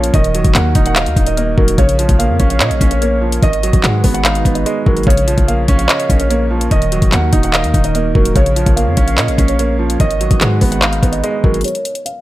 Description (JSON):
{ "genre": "hip hop, trap", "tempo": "146 BPM", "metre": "4/4", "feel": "half-time", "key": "Bb phrygian", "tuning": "A4 = 440 Hz", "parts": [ { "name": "felt-muted upright piano", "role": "accompaniment", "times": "0.0-11.7 s", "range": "Db3 to Eb5", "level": "-19 LUFS", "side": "right 3 dB", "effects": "low-pass filter" }, { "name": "dark analog pad", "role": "sustained chords", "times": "0.0-11.6 s", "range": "Eb3 to F5", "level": "-25 LUFS", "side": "equal", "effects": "chorus" }, { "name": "warm 808-style bass", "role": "bass", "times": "0.0-11.6 s", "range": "Eb1 to Bb2", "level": "-17 LUFS", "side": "equal", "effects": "none" }, { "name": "trap drum kit", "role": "drums", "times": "0.0-12.2 s", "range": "handclaps, hi-hat, kick drum", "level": "-14 LUFS", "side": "equal", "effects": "none" }, { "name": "dark concert grand piano", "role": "melody", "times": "0.1-12.2 s", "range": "Bb4 to Gb5", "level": "-20 LUFS", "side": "right 1 dB", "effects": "low-pass filter, tape echo" } ], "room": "little or no reverb", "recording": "none", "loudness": "-11 LUFS", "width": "side -16 dB against mid", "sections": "0.0-11.6 A section", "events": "break 11.6-12.2", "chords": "0.1 Ebm; 1.8 Bbm; 3.4 Abm7; 5.1 Bbm; 6.7 Ebm; 8.4 Bbm; 10.0 Abm7; 11.6 N.C." }